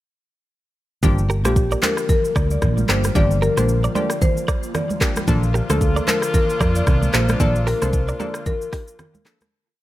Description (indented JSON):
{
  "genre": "afrobeats",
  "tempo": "113 BPM",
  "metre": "4/4",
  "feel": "swing 58% on 16ths",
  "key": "Bb major",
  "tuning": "A4 = 436 Hz",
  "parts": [
    { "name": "hollow square pluck", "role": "accompaniment", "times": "1.0-9.5 s", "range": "F3 to A4", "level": "-27 LUFS", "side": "left 2 dB", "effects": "chorus" },
    { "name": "airy breathy pad", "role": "sustained chords", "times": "1.4-9.5 s", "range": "D3 to F4", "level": "-31 LUFS", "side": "left 1 dB", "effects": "chorus, phaser" },
    { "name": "hollow-body short-scale fingered electric bass", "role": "bass", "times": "1.0-8.1 s", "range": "G1 to F2", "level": "-20 LUFS", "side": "equal", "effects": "none" },
    { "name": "afro-pop drum kit", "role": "drums", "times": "1.0-9.5 s", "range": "handclaps, hi-hat, kick drum, rim click, shaker", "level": "-21 LUFS", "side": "equal", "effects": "none" },
    { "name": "congas", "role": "percussion", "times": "1.0-9.5 s", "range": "none", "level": "-27 LUFS", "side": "right 2 dB", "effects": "none" },
    { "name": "direct-recorded clean electric guitar", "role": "riff", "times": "1.3-9.4 s", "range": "Eb4 to D5", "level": "-29 LUFS", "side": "right 4 dB", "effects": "digital delay" },
    { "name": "marimba with medium hard mallets", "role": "melody", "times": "1.4-8.9 s", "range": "G4 to D5", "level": "-24 LUFS", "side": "left 2 dB", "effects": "none" },
    { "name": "warm horn section", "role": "second line", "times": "5.3-9.2 s", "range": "F3 to F4", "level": "-29 LUFS", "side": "left 2 dB", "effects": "none" }
  ],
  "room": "digital ambience",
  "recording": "none",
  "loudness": "-17 LUFS",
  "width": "side -15 dB against mid",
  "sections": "1.0-9.5 chorus",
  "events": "fade-out 7.4-9.5",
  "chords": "1.0 Gm7; 5.3 Bbmaj7"
}